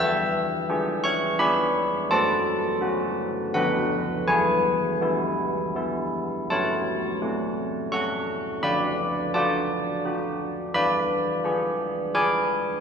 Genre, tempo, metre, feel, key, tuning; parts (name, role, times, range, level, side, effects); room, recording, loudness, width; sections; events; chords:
classical, tune for church bells; 85 BPM; 3/4; straight; A4 = 440 Hz
carillon bells; solo; 0.0-12.8 s; D3 to E6; -22 LUFS; equal
wet church reverb, RT60 3.7 s; minimal, uncompressed stereo recording; -22 LUFS; side -6 dB against mid
0.0-6.5 A section; 6.5-12.8 A section
0.0 E7; 2.1 F#m; 3.5 Bm/D; 4.3 E; 6.5 F#m; 8.6 D; 10.7 E7